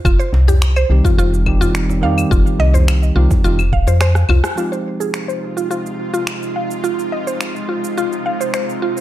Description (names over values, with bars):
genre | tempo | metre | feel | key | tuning
organic downtempo | 106 BPM | 4/4 | straight | F minor | A4 = 439 Hz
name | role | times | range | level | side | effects
woody FM bass | bass | 0.0-4.4 s | Eb1 to F2 | -14 LUFS | equal | none
mallet-like synth pluck | arpeggios | 0.1-9.0 s | F4 to F5 | -21 LUFS | equal | chorus, tape echo
electronic claves, cabasa, finger snaps and rim click | drums | 0.1-9.0 s | none | -24 LUFS | equal | none
electronic kick drum | drums | 0.1-3.8 s | none | -16 LUFS | equal | none
djembe | percussion | 0.3-4.4 s | none | -23 LUFS | right 1 dB | none
bell-like tine electric piano | accompaniment | 0.9-9.0 s | Eb3 to G4 | -23 LUFS | right 2 dB | sidechain pumping, tape echo
bowed-like drone | sustained chords | 5.1-9.0 s | C3 to F4 | -24 LUFS | right 1 dB | built-in reverb, vintage 12-bit sampler grit, sidechain pumping
room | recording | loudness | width
digital ambience | none | -14 LUFS | side -13 dB against mid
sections
0.0-4.6 A section; 4.6-9.0 B section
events
kick drops out 4.0-4.6; drum fill 4.0-4.6; band accent 4.4; filter sweep on synth pluck 4.6-9.0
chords
0.0 Cm/F; 4.6 Fm7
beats
| 0.05 0.61 1.18 1.75 | 2.31 2.88 3.44 4.01 | 4.58 5.14 5.71 6.28 | 6.84 7.41 7.97 8.54